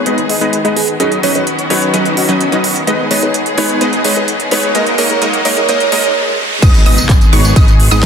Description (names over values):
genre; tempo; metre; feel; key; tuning
EDM, festival progressive house; 128 BPM; 4/4; straight; G# minor; A4 = 445 Hz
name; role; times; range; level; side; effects
felt-muted upright piano; accompaniment; 0.0-6.0 s; F#3 to D#5; -19 LUFS; left 4 dB; sidechain pumping, dub echo
clear studio string section; sustained chords; 0.0-8.1 s; D#3 to G#4; -21 LUFS; equal; sidechain pumping
supersaw stab; riff; 0.0-8.1 s; F#3 to D#5; -15 LUFS; equal; sidechain pumping, low-pass filter, dub echo
fat analog bass; bass; 0.0-8.1 s; G#1 to B1; -21 LUFS; equal; none
riser, swell and impact; sound effects; 2.7-8.1 s; none; -22 LUFS; equal; none
big-room dance drum kit; drums; 0.1-8.1 s; crash cymbal, handclaps, hi-hat, tambourine; -18 LUFS; right 3 dB; none
bell-like FM electric piano; melody; 0.8-6.1 s; G#4 to C#5; -19 LUFS; right 6 dB; chorus, phaser, vintage 12-bit sampler grit, dub echo
wide unison pluck; arpeggios; 6.6-8.1 s; C#6 to D#6; -19 LUFS; right 1 dB; sidechain pumping, dub echo
electronic kick drum; drums; 6.6-8.1 s; none; -8 LUFS; equal; overdrive
room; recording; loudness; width
moderate lush hall reverb, RT60 1.8 s; dense, heavily limited modern master, high-pass filter; -10 LUFS; side -7 dB against mid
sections
0.0-6.6 A section; 6.6-8.1 B section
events
build-up 0.0-6.6; filter sweep on supersaw synth 0.0-6.6; swell 5.7-6.6; stop 6.2-6.6; drop 6.6-8.1; impact 6.6-8.1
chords
0.0 G#m; 1.0 Badd9; 2.9 G#m; 4.7 D#m; 6.6 G#m